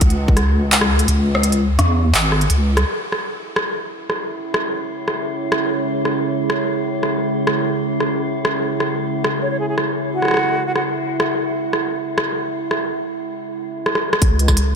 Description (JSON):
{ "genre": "half-time drum and bass", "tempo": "169 BPM", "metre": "4/4", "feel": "half-time", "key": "C# minor", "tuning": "A4 = 440 Hz", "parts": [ { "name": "deep soft wobble bass", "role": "bass", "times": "0.0-2.8, 14.2-14.7 s", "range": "G#1 to E2", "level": "-16 LUFS", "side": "equal", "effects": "chorus" }, { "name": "electronic kick drum", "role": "drums", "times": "0.0-0.4, 14.2-14.6 s", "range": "none", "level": "-15 LUFS", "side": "equal", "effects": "none" }, { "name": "industrial drum kit", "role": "drums", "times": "0.0-14.6 s", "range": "handclaps, hi-hat, rim click, tambourine", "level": "-20 LUFS", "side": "equal", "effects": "none" }, { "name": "deep dark ambient pad", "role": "sustained chords", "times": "4.7-14.2 s", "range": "C#4 to E5", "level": "-24 LUFS", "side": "right 1 dB", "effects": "chorus, built-in reverb, sidechain pumping" }, { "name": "metallic inharmonic drone", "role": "texture", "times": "3.5-12.8 s", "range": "E4", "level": "-26 LUFS", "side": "right 3 dB", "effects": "chorus, built-in reverb" }, { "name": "silver concert flute", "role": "melody", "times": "9.4-10.8 s", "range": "F#4 to C#5", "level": "-26 LUFS", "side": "equal", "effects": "ping-pong delay" } ], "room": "light reverb, digital ambience", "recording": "none", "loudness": "-17 LUFS", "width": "side -6 dB against mid", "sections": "0.0-2.9 A section; 2.9-14.2 B section", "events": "kick drops out 1.4-2.9; filter sweep on ambient pad 2.9-14.2; drum fill 13.9-14.2", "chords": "0.0 N.C.; 2.9 C#m; 14.2 N.C." }